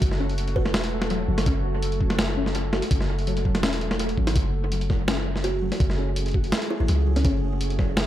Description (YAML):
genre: half-time drum and bass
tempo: 166 BPM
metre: 4/4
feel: swing 53% on 16ths, half-time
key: F# minor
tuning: A4 = 441 Hz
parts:
  - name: deep dark ambient pad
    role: sustained chords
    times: 0.0-8.1 s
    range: A3 to A4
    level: -32 LUFS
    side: right 2 dB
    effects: chorus, built-in reverb, sidechain pumping
  - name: long sustained 808-style bass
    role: bass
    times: 0.0-8.1 s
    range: E1 to C#2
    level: -26 LUFS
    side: equal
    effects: none
  - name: boom bap sampler-style drum kit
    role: drums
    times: 0.0-8.0 s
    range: hi-hat, snare drum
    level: -28 LUFS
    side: equal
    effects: dub echo
  - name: electronic kick drum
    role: drums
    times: 0.0-7.9 s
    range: none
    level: -24 LUFS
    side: equal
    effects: none
  - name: warbly dusty pluck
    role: arpeggios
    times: 0.2-7.9 s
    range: F#3 to F#4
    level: -32 LUFS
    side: left 2 dB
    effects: ensemble chorus, dub echo
  - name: buzzing kalimba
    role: melody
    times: 0.6-0.9, 5.4-7.3 s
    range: C#4 to B4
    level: -32 LUFS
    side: right 1 dB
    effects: dub echo
room: digital ambience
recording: echo-heavy mix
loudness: -21 LUFS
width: side -12 dB against mid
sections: 0.0-4.4 A section; 4.4-8.1 A section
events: drop 0.0-4.4, 4.4-8.1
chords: 0.0 F#m; 4.4 F#madd9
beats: | 0.02 0.38 0.74 1.10 | 1.47 1.83 2.19 2.55 | 2.91 3.27 3.63 4.00 | 4.36 4.72 5.08 5.44 | 5.80 6.16 6.53 6.89 | 7.25 7.61 7.97